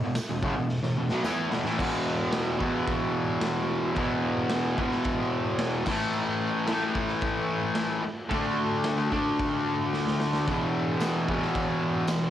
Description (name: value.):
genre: garage rock duo or trio.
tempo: 110 BPM.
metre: 4/4.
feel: straight.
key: unclear.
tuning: A4 = 440 Hz.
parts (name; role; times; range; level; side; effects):
fuzz guitar; riff; 0.0-12.3 s; E2 to E4; -26 LUFS; equal; distortion, cassette tape.
raw garage drum kit; drums; 0.2-12.2 s; crash cymbal, hi-hat, kick drum, snare drum, splash cymbal; -33 LUFS; equal; cassette tape.
tambourine; percussion; 0.2-1.4, 11.0-12.2 s; none; -45 LUFS; right 7 dB; none.
room: moderate small room reverb, RT60 0.6 s.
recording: home recording on cassette.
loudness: -25 LUFS.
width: side -11 dB against mid.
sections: 0.0-1.8 A section; 1.8-12.3 B section.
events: drum fill 0.7-1.8, 9.9-10.5.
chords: 0.0 E5; 5.9 A5; 8.3 D5; 10.5 E5.